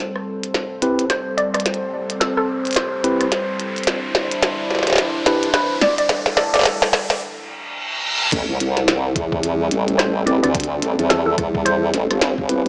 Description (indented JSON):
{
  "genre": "glitch hop",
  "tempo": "108 BPM",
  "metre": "4/4",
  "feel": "swing 60% on 16ths",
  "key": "A minor",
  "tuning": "A4 = 441 Hz",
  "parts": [
    { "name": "warm analog pad", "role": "sustained chords", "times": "0.0-12.7 s", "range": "G3 to C5", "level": "-25 LUFS", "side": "equal", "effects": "chorus, sidechain pumping" },
    { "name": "riser, reverse cymbal and sub drop", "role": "sound effects", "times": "0.7-10.5 s", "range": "none", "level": "-26 LUFS", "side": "equal", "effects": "none" },
    { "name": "glitchy drum kit", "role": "drums", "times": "0.2-12.7 s", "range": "crash cymbal, hi-hat, rim click, snare drum", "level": "-19 LUFS", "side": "equal", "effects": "none" },
    { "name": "mellow tine electric piano", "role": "stabs", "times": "0.8-5.5, 10.3-12.7 s", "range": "C4 to B4", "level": "-21 LUFS", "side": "equal", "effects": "fast stereo tremolo, sidechain pumping, low-pass filter, tape echo" },
    { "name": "woody wave-folded pluck", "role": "melody", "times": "1.1-6.6, 10.0-12.1 s", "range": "A4 to D5", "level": "-22 LUFS", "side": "equal", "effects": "lush chorus, tape echo" },
    { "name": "formant-sweep wobble bass", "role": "bass", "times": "8.3-12.7 s", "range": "G1 to E2", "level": "-19 LUFS", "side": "equal", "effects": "chorus, tube saturation" },
    { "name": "electronic kick drum", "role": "drums", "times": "8.3-12.5 s", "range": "none", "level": "-26 LUFS", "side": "equal", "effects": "none" }
  ],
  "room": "moderate plate reverb, RT60 1.8 s",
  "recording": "small speaker sound",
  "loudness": "-16 LUFS",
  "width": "side -29 dB against mid",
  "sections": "0.0-8.3 A section; 8.3-12.7 B section",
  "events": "build-up 0.0-8.3; drum fill 0.0-7.2; riser 0.7-7.2; break 7.2-8.3; reverse cymbal 7.2-8.3; drop 8.3-12.7; impact 8.3-10.5",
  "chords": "0.0 Am7"
}